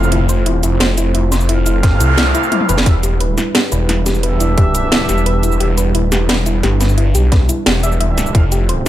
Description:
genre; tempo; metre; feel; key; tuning
dark technical drum and bass; 175 BPM; 4/4; straight; E phrygian; A4 = 441 Hz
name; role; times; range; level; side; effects
dark analog pad; sustained chords; 0.0-8.9 s; G3 to C5; -22 LUFS; right 3 dB; chorus, sidechain pumping
soft round pluck; arpeggios; 0.0-8.9 s; E4 to E5; -22 LUFS; left 4 dB; chorus, sidechain pumping, digital delay
warm brass ensemble; stabs; 0.0-5.7, 7.8-8.4 s; C4 to F5; -23 LUFS; right 3 dB; digital delay
snarling distorted saw bass; bass; 0.0-8.8 s; E1 to C2; -15 LUFS; equal; distortion, overdrive, sidechain pumping
drum and bass drum kit; drums; 0.0-8.9 s; hi-hat, shaker, snare drum, toms; -18 LUFS; equal; overdrive, small room reverb
noise sweep; sound effects; 1.8-2.9 s; none; -23 LUFS; right 2 dB; none
electronic kick drum; drums; 1.8-4.6, 7.3-8.4 s; none; -11 LUFS; equal; overdrive, small room reverb
room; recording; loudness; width
light reverb, digital ambience; none; -12 LUFS; side -13 dB against mid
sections
0.0-8.9 A section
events
noise sweep 1.8-2.9; kick drops out 2.2-2.9; drum fill 2.5-2.9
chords
0.0 F; 2.9 Em7; 8.3 F

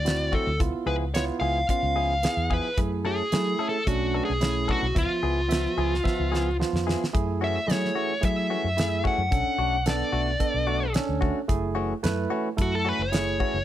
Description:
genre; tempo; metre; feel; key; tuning
straight-eighth soul blues; 110 BPM; 4/4; straight; F# minor; A4 = 440 Hz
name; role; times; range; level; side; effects
dark smooth lead guitar; melody; 0.0-13.6 s; E#4 to F#5; -27 LUFS; left 1 dB; overdrive, slapback echo
barky tine electric piano; accompaniment; 0.0-13.6 s; E#3 to E5; -30 LUFS; right 5 dB; none
vintage muted fingered electric bass; bass; 0.0-13.6 s; F#1 to F#3; -29 LUFS; equal; none
damped 70s drum kit; drums; 0.1-13.5 s; hi-hat, kick drum, snare drum; -27 LUFS; equal; none
direct-recorded clean electric guitar; stabs; 0.3-13.6 s; E3 to A4; -34 LUFS; left 7 dB; none
room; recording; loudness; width
light reverb; none; -23 LUFS; side -12 dB against mid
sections
0.0-7.1 A section; 7.1-13.6 B section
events
drum fill 6.0-7.1; lead electric guitar solo 7.1-13.6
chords
0.0 D7; 0.6 C#7#9; 2.8 F#m7; 3.9 Bm7; 5.0 C#7#9; 7.1 F#m7; 9.3 Bm7; 11.5 F#m7

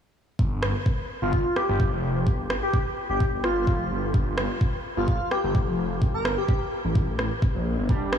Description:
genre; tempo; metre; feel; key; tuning
bass house; 128 BPM; 4/4; swing 54% on 16ths; G minor; A4 = 440 Hz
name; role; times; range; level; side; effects
phased detuned saw bass; bass; 0.4-8.2 s; F1 to Bb1; -28 LUFS; equal; phaser, tube saturation, sidechain pumping
electronic kick drum; drums; 0.4-8.0 s; none; -23 LUFS; equal; overdrive
electronic rim click; drums; 0.6-8.2 s; none; -32 LUFS; right 1 dB; overdrive
airy dreamy lead; melody; 1.2-6.6 s; F4 to Bb4; -28 LUFS; equal; chorus, analog delay
warm baby grand piano; stabs; 7.9-8.2 s; G3 to G4; -27 LUFS; right 4 dB; ensemble chorus, sidechain pumping
room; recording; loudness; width
moderate huge ambient reverb, RT60 6.0 s; dreamy mix soaked in reverb, small room reverb; -22 LUFS; side -8 dB against mid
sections
0.4-8.2 A section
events
none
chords
0.4 G5

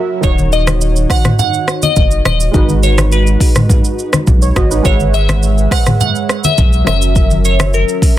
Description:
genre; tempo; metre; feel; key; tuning
afrobeats; 104 BPM; 4/4; straight; unclear; A4 = 435 Hz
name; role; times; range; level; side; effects
warm analog keys; accompaniment; 0.0-8.2 s; D#3 to F#5; -18 LUFS; right 2 dB; chorus, plate reverb
glassy wavetable pluck; melody; 0.2-8.2 s; A#4 to F#5; -18 LUFS; left 1 dB; chorus, digital delay, plate reverb
warm sub bass; bass; 0.2-7.8 s; D#1 to B1; -13 LUFS; equal; none
afro-pop drum kit; drums; 0.2-8.2 s; hi-hat, kick drum, rim click, shaker, toms; -13 LUFS; equal; soft clipping on snare
congas; percussion; 0.4-7.7 s; none; -20 LUFS; left 2 dB; none
room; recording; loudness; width
light reverb; dense, heavily limited modern master; -10 LUFS; side -13 dB against mid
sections
0.2-8.2 A section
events
break 0.0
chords
0.2 D#m7; 2.5 G#m7; 4.8 C#m7/G#; 6.9 F#7

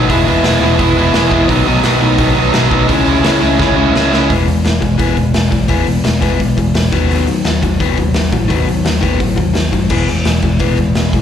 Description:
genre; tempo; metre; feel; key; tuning
punk rock; 171 BPM; 4/4; straight; E major; A4 = 442 Hz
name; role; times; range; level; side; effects
overdriven electric guitar; riff; 0.0-11.2 s; B2 to E4; -15 LUFS; left 8 dB; slapback echo
overdriven semi-hollow guitar; riff; 0.0-4.3 s; B2 to E4; -14 LUFS; right 10 dB; none
picked electric bass; bass; 0.0-11.2 s; E1 to D#3; -16 LUFS; right 1 dB; none
raw garage drum kit; drums; 0.1-11.2 s; crash cymbal, hi-hat, kick drum, snare drum; -17 LUFS; right 1 dB; none
room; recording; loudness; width
little or no reverb; live gig heard through the venue's PA, club reverb; -11 LUFS; side -9 dB against mid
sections
0.0-4.3 A section; 4.3-11.2 B section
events
drum fill 3.6-4.3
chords
0.1 E; 1.5 B; 2.9 C#m; 4.3 E; 6.9 B/D#; 9.9 E

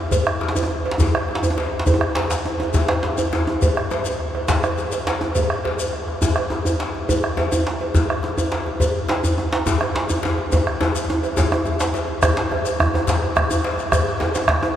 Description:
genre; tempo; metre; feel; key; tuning
west african traditional, West African drum ensemble; 139 BPM (dotted quarters); 12/8; straight; none; none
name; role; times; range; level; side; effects
bombo; percussion; 0.1-14.6 s; none; -23 LUFS; right 1 dB; none
cowbell; percussion; 0.1-14.8 s; none; -26 LUFS; right 2 dB; none
djembe; percussion; 0.1-14.8 s; none; -26 LUFS; left 3 dB; none
shekere; percussion; 0.1-14.5 s; none; -31 LUFS; left 3 dB; none
djembe; percussion; 0.5-14.8 s; none; -23 LUFS; right 1 dB; none
room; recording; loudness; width
wet cathedral reverb, RT60 5.6 s; recorded in a church or concert hall; -18 LUFS; side -10 dB against mid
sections
0.0-12.2 A section; 12.2-14.8 B section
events
speeding up 0.0-14.8; drum fill 10.5-12.2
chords
none

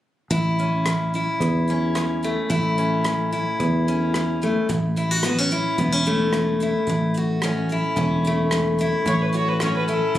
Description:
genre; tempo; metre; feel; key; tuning
honky-tonk and classic country; 110 BPM; 4/4; straight; A major; A4 = 440 Hz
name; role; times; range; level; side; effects
picked steel-string acoustic guitar; accompaniment; 0.3-10.2 s; E2 to F#4; -22 LUFS; left 2 dB; none
sustaining fretless electric bass; bass; 0.3-10.2 s; E1 to E2; -23 LUFS; right 1 dB; none
unplugged drum kit; drums; 0.3-10.2 s; hi-hat, kick drum, rim click; -30 LUFS; right 1 dB; none
clear fiddle; second line; 9.1-10.2 s; A4 to C#5; -24 LUFS; right 1 dB; none
room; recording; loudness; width
light reverb; recorded on a phone in the room, club reverb; -19 LUFS; side -13 dB against mid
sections
0.3-4.7 A section; 4.7-10.2 B section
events
none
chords
0.3 A

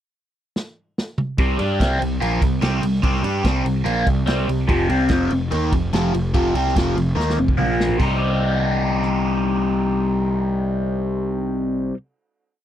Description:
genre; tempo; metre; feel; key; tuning
classic rock; 145 BPM; 4/4; straight; C minor; A4 = 440 Hz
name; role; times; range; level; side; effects
vintage drum kit; drums; 0.6-9.1 s; crash cymbal, kick drum, ride cymbal, rim click, snare drum, toms; -23 LUFS; equal; none
overdriven electric guitar; riff; 1.4-12.0 s; F2 to G4; -20 LUFS; left 1 dB; phaser
fuzz picked electric bass; bass; 1.4-11.9 s; F1 to G2; -23 LUFS; equal; overdrive
room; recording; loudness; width
little or no reverb; dry, close 1970s-style studio recording; -18 LUFS; side -11 dB against mid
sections
0.0-1.4 pickup bar; 1.4-8.0 riff; 8.0-11.3 final chord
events
drum fill 0.6-1.4, 7.2-8.0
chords
0.0 N.C.; 1.4 C5; 4.7 F5; 7.6 Bb5; 8.0 Cm

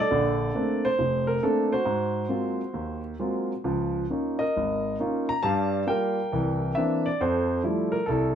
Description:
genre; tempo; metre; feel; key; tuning
solo jazz; 136 BPM; 4/4; swing 67% on 8ths, rubato; F major; A4 = 439 Hz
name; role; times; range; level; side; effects
warm grand piano; solo; 0.0-8.3 s; F1 to Bb5; -24 LUFS; equal; none
room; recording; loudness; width
wet small room ambience, RT60 0.5 s; rough home demo mix; -24 LUFS; side -8 dB against mid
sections
0.0-8.3 A section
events
none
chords
0.1 Bbmaj9; 1.9 Ab13; 3.6 Db69; 5.4 Gm7; 6.3 C9; 7.2 Fmaj9

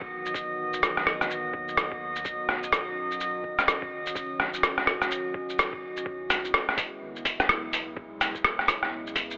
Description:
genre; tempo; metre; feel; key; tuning
future garage; 126 BPM; 4/4; swing 60% on 16ths; C# minor; A4 = 435 Hz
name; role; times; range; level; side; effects
warbly tape-like pad; sustained chords; 0.0-9.4 s; C#3 to F#4; -36 LUFS; equal; chorus, built-in reverb, sidechain pumping
warm sub bass; bass; 0.0-9.4 s; F#1 to E2; -51 LUFS; equal; sidechain pumping
electronic kick drum; drums; 0.0-9.3 s; none; -39 LUFS; equal; none
drifting glass-harmonics texture; texture; 0.0-6.1 s; D#5; -34 LUFS; equal; chorus, built-in reverb
lo-fi sampler-style drum kit; drums; 0.3-9.4 s; hi-hat, rim click, shaker; -25 LUFS; equal; none
room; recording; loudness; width
moderate lush hall reverb, RT60 2.4 s; telephone sound; -25 LUFS; side -40 dB against mid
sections
0.0-6.1 A section; 6.1-9.4 B section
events
none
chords
0.0 B; 6.1 C#m7

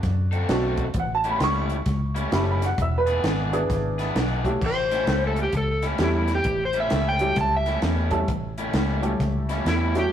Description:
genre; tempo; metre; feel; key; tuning
electric blues shuffle; 131 BPM; 4/4; swing 63% on 8ths; A mixolydian; A4 = 440 Hz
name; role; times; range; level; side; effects
warm upright piano; accompaniment; 0.0-10.1 s; G3 to C#6; -27 LUFS; right 1 dB; none
vintage muted fingered electric bass; bass; 0.0-10.1 s; E1 to F#2; -25 LUFS; left 1 dB; none
compact cocktail drum kit; drums; 0.0-10.0 s; crash cymbal, hi-hat, kick drum, snare drum; -29 LUFS; right 1 dB; none
overdriven semi-hollow guitar; riff; 0.3-10.0 s; A2 to A4; -30 LUFS; left 1 dB; none
overdriven slide guitar; melody; 4.7-10.1 s; E4 to A5; -24 LUFS; equal; none
room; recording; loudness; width
moderate stone room reverb, RT60 1.3 s; rough rehearsal-room recording, warm saturation; -21 LUFS; side -10 dB against mid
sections
0.0-4.6 A section; 4.6-10.1 A section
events
electric slide guitar solo 4.6-10.1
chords
0.0 D7; 1.0 A7; 2.8 E7; 4.6 A7

